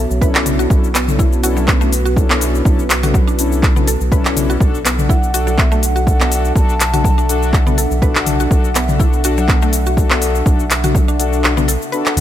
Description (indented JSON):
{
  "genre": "afro house",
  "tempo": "123 BPM",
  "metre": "4/4",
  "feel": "swing 54% on 16ths",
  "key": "unclear",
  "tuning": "A4 = 441 Hz",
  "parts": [
    { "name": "hollow bass bansuri", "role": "melody", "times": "0.0-0.4, 5.1-7.5 s", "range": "E5 to A5", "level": "-24 LUFS", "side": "right 1 dB", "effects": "digital delay" },
    { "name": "dark analog pad", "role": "sustained chords", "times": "0.0-12.2 s", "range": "B3 to F#5", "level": "-24 LUFS", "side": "right 2 dB", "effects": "chorus, sidechain pumping" },
    { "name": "mallet-like synth pluck", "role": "arpeggios", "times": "0.0-12.0 s", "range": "F#3 to B4", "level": "-24 LUFS", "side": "equal", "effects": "chorus, sidechain pumping, digital delay" },
    { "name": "round analog bass", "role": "bass", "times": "0.0-12.2 s", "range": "B1 to E2", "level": "-19 LUFS", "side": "equal", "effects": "sidechain pumping" },
    { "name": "downlifter", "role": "sound effects", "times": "0.0-0.7 s", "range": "none", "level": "barely audible", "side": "none", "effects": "none" },
    { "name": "afro-pop drum kit", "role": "drums", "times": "0.1-12.2 s", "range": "cabasa, handclaps, hi-hat, toms", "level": "-18 LUFS", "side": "left 1 dB", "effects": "none" },
    { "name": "mellow synth brass", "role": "stabs", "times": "0.2-12.2 s", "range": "C#4 to A4", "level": "-22 LUFS", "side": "left 4 dB", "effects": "chorus, sidechain pumping, digital delay" },
    { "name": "electronic kick drum", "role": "drums", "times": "0.2-11.1 s", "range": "none", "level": "-14 LUFS", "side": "equal", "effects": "none" }
  ],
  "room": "little or no reverb",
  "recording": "none",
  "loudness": "-12 LUFS",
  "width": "side -12 dB against mid",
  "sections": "0.0-12.2 A section",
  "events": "kick drops out 11.4-12.2",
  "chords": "0.0 Bm11; 4.6 D/B"
}